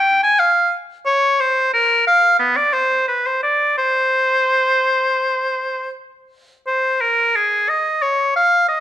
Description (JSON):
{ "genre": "classical, baroque-style fantasia for unaccompanied oboe", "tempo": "82-91 BPM", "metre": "4/4", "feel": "rubato", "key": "unclear", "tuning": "A4 = 440 Hz", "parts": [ { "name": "bright oboe", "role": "solo", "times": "0.0-8.8 s", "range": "B3 to Ab5", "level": "-14 LUFS", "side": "equal", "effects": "none" } ], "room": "moderate recital hall reverb, RT60 1.3 s", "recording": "minimal, uncompressed stereo recording", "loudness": "-14 LUFS", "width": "side -12 dB against mid", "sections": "0.0-6.7 A section; 6.7-8.8 A section", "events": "none", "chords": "none" }